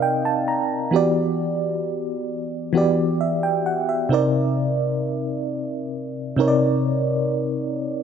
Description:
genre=R&B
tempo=66 BPM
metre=4/4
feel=straight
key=unclear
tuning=A4 = 442 Hz
part: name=FM electric piano with auto-pan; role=solo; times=0.0-8.0 s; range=C3 to Bb5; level=-20 LUFS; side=right 1 dB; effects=none
room=light reverb, digital ambience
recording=none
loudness=-20 LUFS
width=side -7 dB against mid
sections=0.0-8.0 A section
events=FM electric piano fill 0.0-0.9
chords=0.0 Cm7; 0.9 Em7; 4.1 Cm7

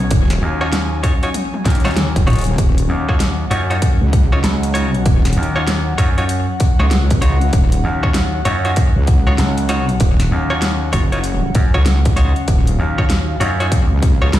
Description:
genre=glitch hop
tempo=97 BPM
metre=4/4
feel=swing 63% on 16ths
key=Eb minor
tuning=A4 = 439 Hz
part: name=warm analog pad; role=sustained chords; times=0.0-14.4 s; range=Gb3 to Ab5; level=-24 LUFS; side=equal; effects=chorus, sidechain pumping
part: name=gritty slap bass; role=bass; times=0.0-14.4 s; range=Db2 to Gb2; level=-18 LUFS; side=equal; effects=overdrive
part: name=dubstep drum kit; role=drums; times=0.0-14.4 s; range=hi-hat, snare drum, toms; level=-23 LUFS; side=equal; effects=none
part: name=wobble bass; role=bass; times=0.1-14.3 s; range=Eb1 to Db2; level=-15 LUFS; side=equal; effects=chorus
part: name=electronic kick drum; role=drums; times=0.1-14.2 s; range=none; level=-15 LUFS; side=equal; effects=none
part: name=direct-recorded clean electric guitar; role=stabs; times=0.6-14.3 s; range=Eb4 to Db5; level=-24 LUFS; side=equal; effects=vintage 12-bit sampler grit, sidechain pumping, ping-pong delay
room=digital ambience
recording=played on a big sound system in a bare room, large studio reverb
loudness=-13 LUFS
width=side -13 dB against mid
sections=0.0-14.4 A section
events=drum fill 1.3-2.6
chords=0.0 Ebm9

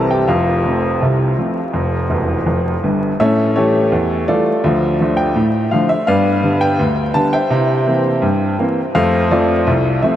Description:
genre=ragtime piano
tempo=83 BPM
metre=2/4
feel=straight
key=F major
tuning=A4 = 440 Hz
part: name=clear baby grand piano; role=solo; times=0.0-10.2 s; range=E1 to Bb5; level=-13 LUFS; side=equal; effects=none
room=wet huge ambient reverb, RT60 8.5 s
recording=dreamy mix soaked in reverb, vinyl crackle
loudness=-13 LUFS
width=side -11 dB against mid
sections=0.0-3.2 A section; 3.2-10.2 B section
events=grand piano fill 2.1-3.2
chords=0.3 F; 3.2 A7; 4.6 Dm; 6.1 G; 7.5 C7; 9.0 F

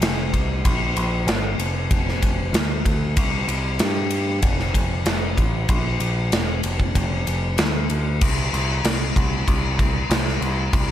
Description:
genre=hard rock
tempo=95 BPM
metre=4/4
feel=straight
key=unclear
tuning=A4 = 441 Hz
part: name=growling picked electric bass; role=bass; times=0.0-10.9 s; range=E1 to G2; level=-23 LUFS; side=equal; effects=overdrive
part: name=big rock drum kit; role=drums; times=0.0-10.9 s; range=crash cymbal, kick drum, ride cymbal, snare drum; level=-21 LUFS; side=equal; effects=none
room=little or no reverb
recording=none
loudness=-19 LUFS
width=side -11 dB against mid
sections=0.0-8.2 A section; 8.2-10.9 B section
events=none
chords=none

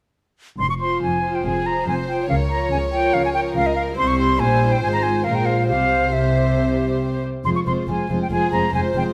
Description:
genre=quick classical-period movement for symphony orchestra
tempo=140 BPM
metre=4/4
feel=straight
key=F minor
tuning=A4 = 440 Hz
part: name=bright concert flute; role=second line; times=0.6-9.0 s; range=Eb5 to Db6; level=-24 LUFS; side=equal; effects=none
part: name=clear chamber double bass section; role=bass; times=0.6-9.0 s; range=F1 to Db2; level=-28 LUFS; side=equal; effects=none
part: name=dark chamber cello section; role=bass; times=0.6-9.0 s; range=F2 to Db3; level=-27 LUFS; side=equal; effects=none
part: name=warm chamber violin section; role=melody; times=0.8-9.1 s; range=Bb4 to C5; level=-34 LUFS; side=equal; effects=none
part: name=dark chamber viola section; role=accompaniment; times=0.8-9.1 s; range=F3 to G4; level=-28 LUFS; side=equal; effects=none
part: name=warm chamber violin section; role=second line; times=1.5-9.1 s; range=Ab4 to Db5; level=-29 LUFS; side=equal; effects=none
room=moderate recital hall reverb, RT60 1.6 s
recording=none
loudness=-20 LUFS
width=mono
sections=0.6-9.1 A section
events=none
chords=0.6 Fm; 2.3 Bbm/Db; 4.0 C; 4.8 Fm/Ab; 5.7 C; 7.5 Fm

